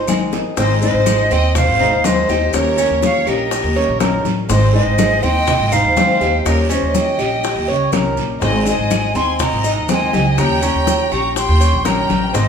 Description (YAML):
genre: latin, Cuban son and guajira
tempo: 122 BPM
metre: 4/4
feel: straight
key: Ab major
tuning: A4 = 440 Hz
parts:
  - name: silver concert flute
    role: melody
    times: 0.0-12.5 s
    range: Db5 to Db6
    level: -20 LUFS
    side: right 1 dB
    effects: none
  - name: rich studio violin section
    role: second line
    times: 0.0-12.5 s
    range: Bb4 to Bb5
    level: -22 LUFS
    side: left 1 dB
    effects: none
  - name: nylon-string guitar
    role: accompaniment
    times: 0.0-12.5 s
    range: Eb3 to Ab4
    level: -22 LUFS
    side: left 4 dB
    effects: none
  - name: Cuban tres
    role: arpeggios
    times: 0.0-12.5 s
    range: C4 to Db5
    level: -22 LUFS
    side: right 2 dB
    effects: none
  - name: upright bass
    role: bass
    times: 0.0-12.5 s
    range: Ab1 to Eb2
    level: -19 LUFS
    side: right 1 dB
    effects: none
  - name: bongos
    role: percussion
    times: 0.1-12.5 s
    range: none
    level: -26 LUFS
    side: left 4 dB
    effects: none
  - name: claves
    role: percussion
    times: 0.1-12.1 s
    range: none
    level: -34 LUFS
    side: equal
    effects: none
  - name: congas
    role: percussion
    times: 0.1-12.5 s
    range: none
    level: -22 LUFS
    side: left 2 dB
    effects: none
  - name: guiro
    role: percussion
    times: 0.1-12.5 s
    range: none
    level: -32 LUFS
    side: right 5 dB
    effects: none
  - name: maracas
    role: percussion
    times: 0.1-12.5 s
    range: none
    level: -31 LUFS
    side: left 5 dB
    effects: none
room: wet large studio reverb, RT60 1.0 s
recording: band playing live in one room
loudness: -13 LUFS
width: side -7 dB against mid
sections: 0.6-12.5 A section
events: drum fill 0.0-0.6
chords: 0.0 Ab; 2.5 Eb7; 4.5 Ab; 6.5 Eb7; 8.4 Ab; 10.4 Eb7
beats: 0.08 | 0.57 1.06 1.55 2.04 | 2.54 3.02 3.52 4.01 | 4.50 4.99 5.48 5.97 | 6.46 6.95 7.44 7.93 | 8.42 8.91 9.40 9.89 | 10.38 10.87 11.36 11.85 | 12.34